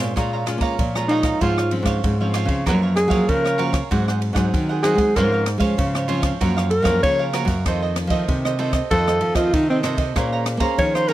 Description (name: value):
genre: samba and choro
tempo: 96 BPM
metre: 4/4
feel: straight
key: Bb minor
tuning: A4 = 440 Hz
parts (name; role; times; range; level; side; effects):
- cavaquinho; accompaniment; 0.0-11.1 s; F4 to Bb5; -27 LUFS; right 8 dB; none
- nylon-string guitar; accompaniment; 0.0-11.1 s; F2 to C5; -26 LUFS; left 3 dB; none
- nylon-string guitar; bass; 0.0-11.1 s; F2 to Bb3; -22 LUFS; right 1 dB; none
- open jazz drum kit; drums; 0.2-11.1 s; kick drum, ride cymbal, rim click; -25 LUFS; equal; none
- breathy alto saxophone; melody; 1.1-11.1 s; C4 to Db5; -20 LUFS; equal; slapback echo
room: studio reverb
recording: dry, close 1970s-style studio recording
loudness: -17 LUFS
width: side -14 dB against mid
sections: 0.2-11.1 A section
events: drum fill 0.0; alto saxophone solo 0.2-11.1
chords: 0.2 Bbm7; 1.4 Dbmaj7/Ab; 2.7 Gbmaj7; 3.9 Ab7; 5.2 Dbmaj7/Ab; 6.4 Gbmaj7; 7.7 F7; 10.2 Bbm9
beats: | 0.17 0.79 1.42 2.04 | 2.66 3.29 3.91 4.54 | 5.16 5.79 6.41 7.04 | 7.66 8.29 8.91 9.53 | 10.16 10.78